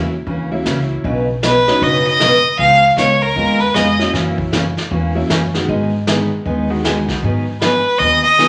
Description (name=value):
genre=country, western swing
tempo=155 BPM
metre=4/4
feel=swing 63% on 8ths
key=unclear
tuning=A4 = 438 Hz
part: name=tack piano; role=accompaniment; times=0.0-7.2 s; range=D#3 to F#4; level=-24 LUFS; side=equal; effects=none
part: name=upright bass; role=bass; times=0.0-8.5 s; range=F#1 to G#2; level=-26 LUFS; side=equal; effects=none
part: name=picked steel-string acoustic guitar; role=accompaniment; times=0.3-8.5 s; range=B2 to B4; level=-21 LUFS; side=equal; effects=none
part: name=vintage brush drum kit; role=drums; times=0.3-8.5 s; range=brushed snare drum, hi-hat, kick drum, snare drum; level=-25 LUFS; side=equal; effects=none
part: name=clear fiddle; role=melody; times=1.4-4.1, 7.6-8.5 s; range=A#4 to E#5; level=-14 LUFS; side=equal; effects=none
room=wet large studio reverb, RT60 0.8 s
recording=none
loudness=-15 LUFS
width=mono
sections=0.0-8.5 A section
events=none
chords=0.0 F#7; 1.0 Badd9; 2.6 C#7; 4.1 F#7; 5.7 G#m